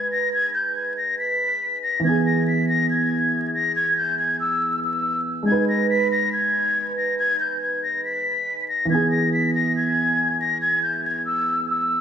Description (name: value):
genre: hip hop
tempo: 140 BPM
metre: 4/4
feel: half-time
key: unclear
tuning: A4 = 439 Hz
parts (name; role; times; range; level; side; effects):
- breathy concert flute; melody; 0.0-12.0 s; E6 to B6; -21 LUFS; left 2 dB; low-pass filter, ping-pong delay
- dark grand piano; accompaniment; 0.0-12.0 s; E3 to B4; -24 LUFS; right 2 dB; lush chorus, low-pass filter
room: wet lush hall reverb, RT60 1.8 s, small room ambience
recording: dreamy mix soaked in reverb, vinyl crackle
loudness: -19 LUFS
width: side -8 dB against mid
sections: 0.0-12.0 A section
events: none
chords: 0.0 G#m; 2.0 E; 5.5 G#m; 8.9 E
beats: | 0.33 0.76 1.19 1.62 | 2.04 2.47 2.90 3.33 | 3.76 4.19 4.62 5.04 | 5.47 5.90 6.33 6.76 | 7.19 7.62 8.04 8.47 | 8.90 9.33 9.76 10.19 | 10.62 11.04 11.47 11.90